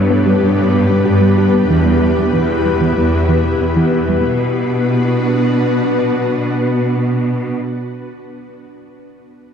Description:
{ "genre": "cinematic", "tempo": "94 BPM", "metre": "4/4", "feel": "straight", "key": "B minor", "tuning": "A4 = 440 Hz", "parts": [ { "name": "ethereal airy pad", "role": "sustained chords", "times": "0.0-7.6 s", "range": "B3 to B4", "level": "-17 LUFS", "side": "left 1 dB", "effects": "ensemble chorus, built-in reverb" }, { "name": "rich symphonic cello section", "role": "bass", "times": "0.0-7.6 s", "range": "E2 to B2", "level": "-16 LUFS", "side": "equal", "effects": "none" }, { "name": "soft round pluck", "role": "arpeggios", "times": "0.1-4.2 s", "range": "E3 to G4", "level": "-19 LUFS", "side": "right 2 dB", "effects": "chorus, tape echo" } ], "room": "moderate scoring stage reverb, RT60 1.7 s", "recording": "dark, warm production", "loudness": "-12 LUFS", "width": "side -7 dB against mid", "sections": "0.0-4.2 A section; 4.2-6.8 B section", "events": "none", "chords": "0.0 G; 1.7 Em; 4.2 Bm" }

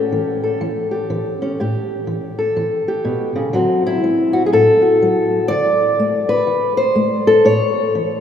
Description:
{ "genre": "blues", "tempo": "123 BPM", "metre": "4/4", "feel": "swing 62% on 8ths", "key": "unclear", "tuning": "A4 = 440 Hz", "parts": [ { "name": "fingerpicked old ladder-braced acoustic guitar", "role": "solo", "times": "0.0-8.2 s", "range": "A2 to D5", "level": "-14 LUFS", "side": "left 1 dB", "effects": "none" } ], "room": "wet cathedral reverb, RT60 5.7 s", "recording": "in a vast, echoing space, small room reverb", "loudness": "-14 LUFS", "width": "side -8 dB against mid", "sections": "0.0-8.2 A section", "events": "none", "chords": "0.0 A7; 3.5 D7; 7.4 A" }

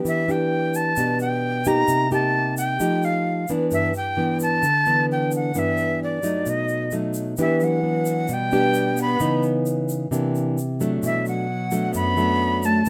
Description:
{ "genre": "bossa nova", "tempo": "131 BPM", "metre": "4/4", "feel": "straight", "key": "unclear", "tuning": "A4 = 438 Hz", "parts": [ { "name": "nylon-string guitar", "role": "accompaniment", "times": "0.0-12.9 s", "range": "F#2 to G4", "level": "-24 LUFS", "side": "equal", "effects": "none" }, { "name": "breathy bright jazz flute", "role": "melody", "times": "0.1-12.9 s", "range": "D5 to B5", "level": "-26 LUFS", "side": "equal", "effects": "none" }, { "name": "egg shaker", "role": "percussion", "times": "0.1-12.9 s", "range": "none", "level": "-39 LUFS", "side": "equal", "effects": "none" }, { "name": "warm cello", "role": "second line", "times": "7.4-12.9 s", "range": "E3 to B3", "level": "-30 LUFS", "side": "equal", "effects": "none" } ], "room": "light reverb", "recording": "none", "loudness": "-22 LUFS", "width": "mono", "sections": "0.0-7.4 A section; 7.4-12.9 B section", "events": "none", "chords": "0.1 Em7; 1.9 Cm7; 2.8 F9; 3.7 G6; 6.5 B7; 7.4 Em7; 9.2 C#m9; 10.1 C9; 11.0 Bm7" }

